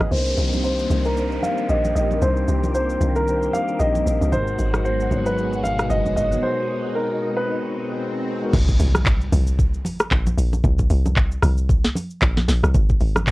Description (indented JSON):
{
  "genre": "amapiano",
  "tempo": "114 BPM",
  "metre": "4/4",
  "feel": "swing 58% on 16ths",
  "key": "unclear",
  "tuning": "A4 = 440 Hz",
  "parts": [
    { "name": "warm grand piano", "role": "melody", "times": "0.0-8.2 s", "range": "Bb4 to F5", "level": "-24 LUFS", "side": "equal", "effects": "low-pass filter, cassette tape, tape echo" },
    { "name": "phased string machine", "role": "sustained chords", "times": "0.0-8.5 s", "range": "Cb3 to G4", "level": "-28 LUFS", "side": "equal", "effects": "ensemble chorus, phaser, sidechain pumping, low-pass filter, cassette tape" },
    { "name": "deep log drum bass", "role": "bass", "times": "0.0-13.3 s", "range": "Gb1 to C2", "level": "-21 LUFS", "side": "equal", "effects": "none" },
    { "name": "smooth R&B drum kit", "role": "drums", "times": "0.0-13.3 s", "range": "crash cymbal, handclaps, hi-hat, kick drum, rim click, shaker, snare drum", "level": "-20 LUFS", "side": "equal", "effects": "cassette tape" },
    { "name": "congas", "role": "percussion", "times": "0.0-13.3 s", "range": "none", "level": "-29 LUFS", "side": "right 1 dB", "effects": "none" },
    { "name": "mellow tine electric piano", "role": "accompaniment", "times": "0.1-8.6 s", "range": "Cb3 to Db5", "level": "-27 LUFS", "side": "left 2 dB", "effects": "low-pass filter, cassette tape" },
    { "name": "downlifter, swell and impact", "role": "sound effects", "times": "0.1-10.6 s", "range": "none", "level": "-32 LUFS", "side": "equal", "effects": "none" },
    { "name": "sub bass with octave", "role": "bass", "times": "4.3-6.4 s", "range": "Ab1", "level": "-28 LUFS", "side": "equal", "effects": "none" }
  ],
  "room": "light reverb",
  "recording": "home recording on cassette",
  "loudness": "-18 LUFS",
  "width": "side -19 dB against mid",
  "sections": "0.1-8.5 A section; 8.5-13.3 B section",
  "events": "filter sweep 0.1-8.5; break 6.4-8.5; swell 7.3-8.5; drop 8.5-13.3; impact 8.5-10.6",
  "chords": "0.1 Cm9; 4.3 Abm9; 8.5 Bbsus2; 12.7 N.C."
}